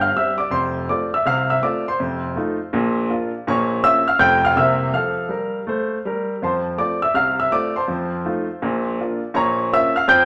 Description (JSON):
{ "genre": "jazz, stride piano", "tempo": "163 BPM", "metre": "4/4", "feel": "swing 65% on 8ths", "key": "F major", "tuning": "A4 = 440 Hz", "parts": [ { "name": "clear grand piano", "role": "solo", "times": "0.0-10.2 s", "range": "F1 to G6", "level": "-20 LUFS", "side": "equal", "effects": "none" } ], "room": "wet large studio reverb, RT60 1.2 s", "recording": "none", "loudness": "-20 LUFS", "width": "mono", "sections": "0.0-6.4 A section; 6.4-10.2 A section", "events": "none", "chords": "0.0 C; 0.5 F; 2.0 F7; 2.7 Bb; 3.5 Bbm; 4.2 F; 4.6 C7; 4.9 F; 7.9 F7; 8.6 Bb; 9.3 Bbm", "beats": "0.14 | 0.51 0.87 1.24 1.61 | 1.98 2.35 2.71 3.08 | 3.45 3.82 4.19 4.55 | 4.92 5.29 5.66 6.03 | 6.40 6.77 7.13 7.50 | 7.87 8.24 8.61 8.98 | 9.35 9.72 10.09" }